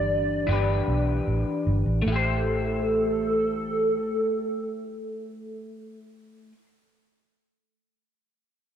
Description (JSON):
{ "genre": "indie pop", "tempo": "76 BPM", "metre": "4/4", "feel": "straight", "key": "A minor", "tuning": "A4 = 441 Hz", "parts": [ { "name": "warbly nostalgic lead", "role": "melody", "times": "0.0-6.0 s", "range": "A4 to D5", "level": "-27 LUFS", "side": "right 1 dB", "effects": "ensemble chorus, slapback echo" }, { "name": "electric guitar through a small old amp", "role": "accompaniment", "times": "0.0-6.7 s", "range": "E3 to C5", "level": "-29 LUFS", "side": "left 2 dB", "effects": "analog chorus, vibrato effect" }, { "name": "vintage muted fingered electric bass", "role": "bass", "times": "0.0-6.5 s", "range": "G1 to B1", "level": "-26 LUFS", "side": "equal", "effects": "none" } ], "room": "light reverb", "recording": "none", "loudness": "-23 LUFS", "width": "side -9 dB against mid", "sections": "0.0-2.1 A section; 2.1-5.2 B section", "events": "none", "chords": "0.0 Em7; 2.1 Am7" }